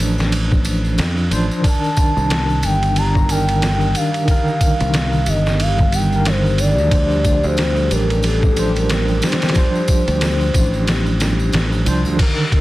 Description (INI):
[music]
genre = trip hop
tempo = 91 BPM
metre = 4/4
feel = swing 59% on 16ths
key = unclear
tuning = A4 = 438 Hz
[part]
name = tine electric piano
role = accompaniment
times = 0.0-12.6 s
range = D3 to C5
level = -21 LUFS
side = equal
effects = medium stereo tremolo, low-pass filter, tape echo
[part]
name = modern bright fingered electric bass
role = bass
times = 0.0-12.2 s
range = G1 to F2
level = -18 LUFS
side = equal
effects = none
[part]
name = trip hop sampler-style drum kit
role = drums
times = 0.0-12.6 s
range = crash cymbal, kick drum, ride cymbal, snare drum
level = -19 LUFS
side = equal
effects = small room reverb
[part]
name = tambourine and triangle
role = percussion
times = 0.0-12.2 s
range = none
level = -33 LUFS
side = left 1 dB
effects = none
[part]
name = dark analog pad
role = sustained chords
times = 2.1-12.6 s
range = G3 to G4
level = -28 LUFS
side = right 1 dB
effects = chorus
[part]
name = pure breathy sine lead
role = melody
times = 1.7-11.5 s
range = A4 to Bb5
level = -22 LUFS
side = equal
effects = chorus, dub echo
[sound]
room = little or no reverb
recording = dense, heavily limited modern master, vinyl crackle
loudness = -14 LUFS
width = side -17 dB against mid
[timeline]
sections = 0.0-12.2 A section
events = kick drops out 10.9-12.2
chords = 0.0 Dm7; 1.6 Cm9; 6.9 Dm7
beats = 0.32 0.98 | 1.64 2.30 2.96 3.62 | 4.28 4.94 5.60 6.26 | 6.92 7.58 8.23 8.89 | 9.55 10.21 10.87 11.53 | 12.19